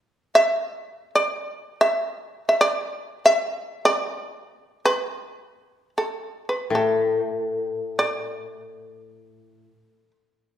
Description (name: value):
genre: japanese traditional, Japanese chamber music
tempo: free time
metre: none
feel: none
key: unclear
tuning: A4 = 445 Hz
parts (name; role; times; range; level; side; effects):
- shamisen; melody; 0.4-10.1 s; A4 to E5; -20 LUFS; right 1 dB; none
- koto; accompaniment; 6.7-9.7 s; A2; -24 LUFS; left 3 dB; none
room: wet recital hall reverb, RT60 1.5 s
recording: recorded in a church or concert hall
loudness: -21 LUFS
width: side -10 dB against mid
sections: 0.0-10.6 A section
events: none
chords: none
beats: free time